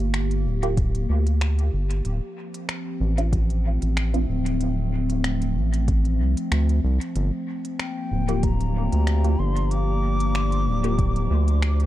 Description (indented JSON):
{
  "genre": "ambient dub",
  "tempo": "94 BPM",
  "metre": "4/4",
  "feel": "swing 54% on 16ths",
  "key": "G minor",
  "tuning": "A4 = 436 Hz",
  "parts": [
    { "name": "warbly tape-like pad", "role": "sustained chords", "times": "0.0-11.9 s", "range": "F3 to D5", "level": "-29 LUFS", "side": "left 1 dB", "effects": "chorus, built-in reverb" },
    { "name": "round analog bass", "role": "bass", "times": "0.0-11.9 s", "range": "D1 to D2", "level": "-22 LUFS", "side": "equal", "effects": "none" },
    { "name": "organic electronic drum kit", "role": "drums", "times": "0.1-11.9 s", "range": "finger snaps, hi-hat", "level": "-34 LUFS", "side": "equal", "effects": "studio reverb, dub echo" },
    { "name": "filtered dub chord stab", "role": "stabs", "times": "0.6-4.3, 8.3-11.0 s", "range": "Bb3 to G4", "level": "-33 LUFS", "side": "right 1 dB", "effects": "phaser, lush chorus, dub echo" },
    { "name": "electronic kick drum", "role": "drums", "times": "0.8-11.1 s", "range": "none", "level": "-24 LUFS", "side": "equal", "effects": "overdrive, studio reverb" },
    { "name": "breathy mellow silver concert flute", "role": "melody", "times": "7.8-11.9 s", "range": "G5 to D6", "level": "-32 LUFS", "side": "left 1 dB", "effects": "dub echo" }
  ],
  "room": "little or no reverb",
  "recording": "dark, warm production",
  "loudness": "-21 LUFS",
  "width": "side -14 dB against mid",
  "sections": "0.0-11.9 A section",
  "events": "none",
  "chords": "0.0 Gm; 2.0 Dm7; 7.2 Gm7"
}